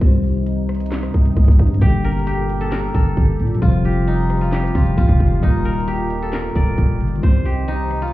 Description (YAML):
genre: hip hop, trap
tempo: 133 BPM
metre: 4/4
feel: half-time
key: unclear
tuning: A4 = 440 Hz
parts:
  - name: steel-string zither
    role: melody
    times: 0.0-8.1 s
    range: Eb4 to D5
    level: -25 LUFS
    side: equal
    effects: none
  - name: bell-like tine electric piano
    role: accompaniment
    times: 0.0-8.1 s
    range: Eb3 to C5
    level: -24 LUFS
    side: left 4 dB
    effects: lush chorus
  - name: sweeping resonant pad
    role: sustained chords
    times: 0.0-8.1 s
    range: Bb2 to A4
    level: -29 LUFS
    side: right 2 dB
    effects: chorus
  - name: growling 808-style bass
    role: bass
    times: 0.0-8.1 s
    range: Eb1 to Bb2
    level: -19 LUFS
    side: equal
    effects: none
  - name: trap drum kit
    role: drums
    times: 0.0-8.1 s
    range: handclaps, hi-hat, kick drum, rim click, snare drum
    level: -16 LUFS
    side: equal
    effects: none
room: little or no reverb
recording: heard muffled through a wall, club reverb, EQ, nothing above 10.7 kHz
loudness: -15 LUFS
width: side -16 dB against mid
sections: 0.0-8.1 A section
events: break 0.0-1.8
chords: 0.0 Cm; 1.8 Gmadd9; 3.6 Fsus2; 5.4 Ebadd9; 7.2 Cm